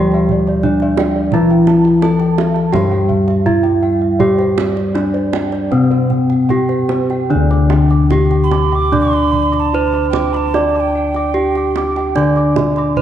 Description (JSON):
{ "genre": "Javanese gamelan", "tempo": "74-87 BPM", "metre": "4/4", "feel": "straight", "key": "D slendro", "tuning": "A4 = 439 Hz", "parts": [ { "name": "gamelan-type bronze metallophone", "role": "melody", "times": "0.0-13.0 s", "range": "C4-40c to D5", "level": "-17 LUFS", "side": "right 2 dB", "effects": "none" }, { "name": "gamelan-type bronze metallophone", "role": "accompaniment", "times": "0.0-13.0 s", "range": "D3 to D4", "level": "-17 LUFS", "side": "left 2 dB", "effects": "none" }, { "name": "gamelan-type bossed gongs", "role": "arpeggios", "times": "0.0-13.0 s", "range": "C5-40c to D6", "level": "-26 LUFS", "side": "left 2 dB", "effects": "none" }, { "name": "gamelan-type bronze metallophone", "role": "arpeggios", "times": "0.0-13.0 s", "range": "C5-40c to D6", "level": "-26 LUFS", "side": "right 5 dB", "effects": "none" }, { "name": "gamelan-type bossed gongs", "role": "bass", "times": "0.0-13.0 s", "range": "D2 to D5", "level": "-18 LUFS", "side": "left 2 dB", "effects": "none" }, { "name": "kendang", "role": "percussion", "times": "0.1-13.0 s", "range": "none", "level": "-23 LUFS", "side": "right 6 dB", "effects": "none" }, { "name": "breathy mellow alto recorder", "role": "second line", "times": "8.4-12.2 s", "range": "G5-24c to D6", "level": "-21 LUFS", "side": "right 6 dB", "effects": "none" } ], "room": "moderate scoring stage reverb, RT60 1.7 s", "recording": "dark, warm production", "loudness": "-12 LUFS", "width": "side -10 dB against mid", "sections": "0.0-7.3 A section; 7.3-13.0 B section", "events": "none", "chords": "none" }